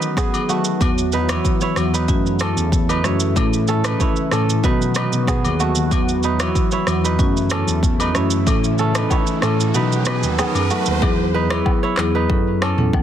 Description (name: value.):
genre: afrobeats.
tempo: 94 BPM.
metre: 4/4.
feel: straight.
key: unclear.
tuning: A4 = 440 Hz.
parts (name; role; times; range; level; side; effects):
marimba with medium mallets; accompaniment; 0.0-13.0 s; D#3 to B4; -22 LUFS; left 2 dB; none.
warm analog pad; sustained chords; 0.0-11.0 s; C#3 to F#4; -28 LUFS; left 1 dB; chorus.
kora; riff; 0.0-13.0 s; A3 to C#5; -24 LUFS; right 5 dB; ping-pong delay.
afro-pop drum kit; drums; 0.0-13.0 s; handclaps, kick drum, rim click, shaker, toms; -21 LUFS; equal; soft clipping on snare.
agogo bells and woodblock; percussion; 0.3-13.0 s; none; -29 LUFS; left 7 dB; none.
tine electric piano; bass; 0.8-13.0 s; D#2 to B2; -21 LUFS; equal; medium stereo tremolo.
riser; sound effects; 8.4-11.0 s; none; -30 LUFS; right 2 dB; none.
room: light reverb.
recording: dense, heavily limited modern master.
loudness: -16 LUFS.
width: side -10 dB against mid.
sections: 0.0-11.0 A section; 11.0-13.0 B section.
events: riser 8.4-11.0; kick muted 9.7-11.0; hi-hats muted 11.0-13.0.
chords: 0.0 B; 0.8 Esus2; 3.4 A; 4.6 B; 5.9 Esus2; 8.5 A; 9.7 B; 11.0 Eadd9; 12.3 F#m7.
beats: 0.17 | 0.81 1.45 2.08 2.72 | 3.36 4.00 4.64 5.28 | 5.92 6.55 7.19 7.83 | 8.47 9.11 9.74 10.38 | 11.02 11.66 12.30 12.94.